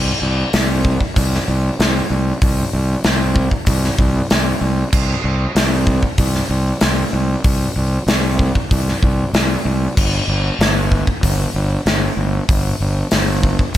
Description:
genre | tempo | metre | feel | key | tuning
hard rock | 95 BPM | 4/4 | straight | unclear | A4 = 440 Hz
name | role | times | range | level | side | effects
fuzz fingered electric bass | bass | 0.0-13.8 s | G1 to C2 | -17 LUFS | equal | overdrive
big rock drum kit | drums | 0.5-13.8 s | crash cymbal, hi-hat, kick drum, snare drum | -17 LUFS | equal | none
room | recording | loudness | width
little or no reverb | none | -14 LUFS | side -13 dB against mid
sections
0.0-13.8 A section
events
none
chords
none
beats
0.53 1.16 1.79 | 2.42 3.04 3.67 4.30 | 4.93 5.56 6.19 6.82 | 7.45 8.08 8.71 9.34 | 9.96 10.59 11.22 11.86 | 12.49 13.12 13.75

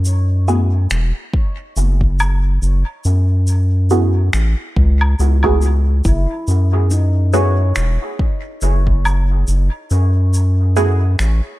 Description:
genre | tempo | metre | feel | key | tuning
ambient dub | 70 BPM | 4/4 | swing 57% on 16ths | F# dorian | A4 = 440 Hz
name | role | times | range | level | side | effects
round analog bass | bass | 0.0-11.4 s | E1 to F#2 | -14 LUFS | equal | none
shaker, finger snaps and woodblock | drums | 0.0-11.4 s | none | -25 LUFS | equal | dub echo
filtered dub chord stab | stabs | 0.5-11.1 s | A3 to G#4 | -22 LUFS | right 2 dB | phaser, lush chorus, dub echo
electronic kick drum | drums | 1.3-9.0 s | none | -18 LUFS | equal | none
handpan | arpeggios | 6.1-9.8 s | D#4 to C#5 | -28 LUFS | left 2 dB | dub echo
room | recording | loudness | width
studio reverb | none | -13 LUFS | side -17 dB against mid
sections
0.0-11.6 A section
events
none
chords
0.0 F#m11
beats
0.05 0.91 1.77 | 2.62 3.48 4.34 5.20 | 6.05 6.91 7.77 8.62 | 9.48 10.34 11.20

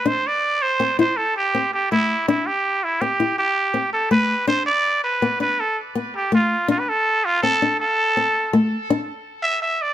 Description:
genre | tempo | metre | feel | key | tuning
highlife | 109 BPM (dotted quarters) | 12/8 | straight | C major | A4 = 440 Hz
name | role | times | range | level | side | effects
trumpet with straight mute | melody | 0.0-9.9 s | E4 to E5 | -19 LUFS | right 2 dB | tape echo
nylon-string guitar | accompaniment | 0.1-9.1 s | A3 to E4 | -20 LUFS | left 3 dB | none
room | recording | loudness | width
moderate studio reverb, RT60 0.6 s | none | -18 LUFS | side -12 dB against mid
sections
0.1-9.9 A section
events
none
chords
0.1 C; 4.5 Asus4; 6.7 Amadd11; 8.9 N.C.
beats
| 0.06 0.62 1.17 1.72 | 2.27 2.82 3.38 3.93 | 4.48 5.03 5.58 6.14 | 6.69 7.24 7.79 8.34 | 8.89 9.44

